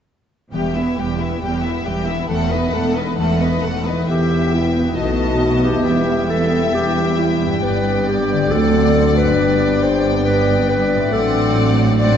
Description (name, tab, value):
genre	classical, dramatic, fast romantic movement for symphony orchestra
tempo	136 BPM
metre	4/4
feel	straight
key	E minor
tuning	A4 = 444 Hz
part	rich chamber violin section	melody	0.5-12.2 s	D#5 to A5	-28 LUFS	left 5 dB	none
part	warm symphonic violin section	second line	0.5-12.2 s	E4 to E5	-25 LUFS	left 4 dB	none
part	warm symphonic viola section	accompaniment	0.5-12.2 s	G3 to C4	-25 LUFS	right 2 dB	none
part	concert harp	arpeggios	0.5-12.2 s	E2 to B4	-25 LUFS	left 7 dB	none
part	rich symphonic cello section	bass	0.5-12.2 s	D2 to B2	-23 LUFS	right 3 dB	none
part	rich symphonic double bass section	bass	0.5-12.2 s	E1 to D2	-22 LUFS	right 4 dB	none
part	mellow clarinet	second line	4.1-12.2 s	E4 to D5	-20 LUFS	left 1 dB	none
part	mellow French horn section	sustained chords	4.1-12.2 s	F#3 to E4	-21 LUFS	left 4 dB	none
room	wet concert hall reverb, RT60 2.0 s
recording	nothing above 7.9 kHz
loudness	-15 LUFS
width	side -8 dB against mid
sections	0.5-4.1 A section; 4.1-12.2 B section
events	none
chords	0.5 Em; 2.3 B7/E; 4.1 Em; 5.0 B7; 5.9 Em; 7.6 G; 8.5 D7; 9.4 G; 11.1 D7/A